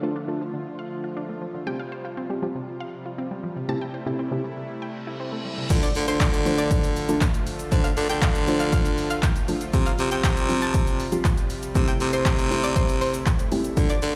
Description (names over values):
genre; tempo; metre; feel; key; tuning
dance-pop; 119 BPM; 4/4; straight; D minor; A4 = 442 Hz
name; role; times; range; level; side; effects
soft round pluck; accompaniment; 0.0-14.2 s; C3 to C5; -31 LUFS; equal; chorus, sidechain pumping
soft supersaw; sustained chords; 0.0-14.2 s; C3 to F4; -35 LUFS; equal; sidechain pumping
unison pluck; arpeggios; 0.0-5.7 s; C3 to A5; -37 LUFS; equal; sidechain pumping, delay
reverse cymbal; sound effects; 4.9-5.7 s; none; -40 LUFS; equal; none
raspy baritone saxophone; bass; 5.7-14.1 s; C3 to D3; -27 LUFS; equal; sidechain pumping
deep house drum kit; drums; 5.7-14.1 s; crash cymbal, handclaps, hi-hat, kick drum, shaker; -25 LUFS; equal; overdrive
tube shaker; percussion; 5.7-14.1 s; none; -47 LUFS; equal; none
analog pluck; melody; 5.8-14.0 s; C5 to A5; -34 LUFS; equal; chorus, delay
room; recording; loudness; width
light reverb; played on a big sound system in a bare room, large studio reverb; -24 LUFS; mono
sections
0.0-5.7 A section; 5.7-14.2 B section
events
reverse cymbal 4.9-5.7; drop 5.7-14.2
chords
0.0 Dm; 1.7 Csus4; 3.7 Am7/C; 5.7 Dm; 9.7 Csus4; 11.8 Am7/C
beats
0.16 0.66 1.17 | 1.67 2.17 2.68 3.18 | 3.69 4.19 4.69 5.20 | 5.70 6.21 6.71 7.21 | 7.72 8.22 8.73 9.23 | 9.74 10.24 10.74 11.25 | 11.75 12.26 12.76 13.27 | 13.77